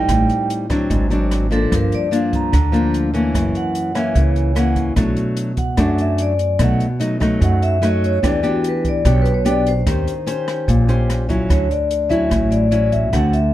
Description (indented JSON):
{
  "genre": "bossa nova",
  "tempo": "147 BPM",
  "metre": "4/4",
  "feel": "straight",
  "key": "D major",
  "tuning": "A4 = 440 Hz",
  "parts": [
    { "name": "vibraphone with medium mallets", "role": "melody", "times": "0.0-13.5 s", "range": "F#4 to Bb5", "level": "-22 LUFS", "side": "equal", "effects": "none" },
    { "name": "nylon-string guitar", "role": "accompaniment", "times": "0.0-13.5 s", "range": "F#2 to C5", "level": "-19 LUFS", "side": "left 1 dB", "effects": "none" },
    { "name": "upright bass", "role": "bass", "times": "0.0-13.5 s", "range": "F#1 to F#2", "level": "-19 LUFS", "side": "right 1 dB", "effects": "none" },
    { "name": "open jazz drum kit", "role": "drums", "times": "0.1-13.4 s", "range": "hi-hat, kick drum, rim click", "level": "-24 LUFS", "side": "equal", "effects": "none" }
  ],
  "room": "light reverb",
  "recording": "close, detailed microphones",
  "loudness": "-15 LUFS",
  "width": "side -14 dB against mid",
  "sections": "0.0-11.5 A section; 11.5-13.5 B section",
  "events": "vibraphone solo 0.0-11.5",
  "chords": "0.1 Am7b5; 0.9 G#7#11; 1.7 Gm7; 3.3 F#7; 5.0 Bm7; 6.6 B7; 8.2 Em7; 9.9 Eb6; 11.5 Dmaj9",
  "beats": "| 0.09 0.49 0.90 1.31 | 1.71 2.12 2.53 2.93 | 3.34 3.75 4.16 4.56 | 4.97 5.38 5.79 6.19 | 6.60 7.01 7.42 7.82 | 8.23 8.64 9.05 9.45 | 9.86 10.27 10.68 11.09 | 11.49 11.90 12.31 12.72 | 13.13 13.54"
}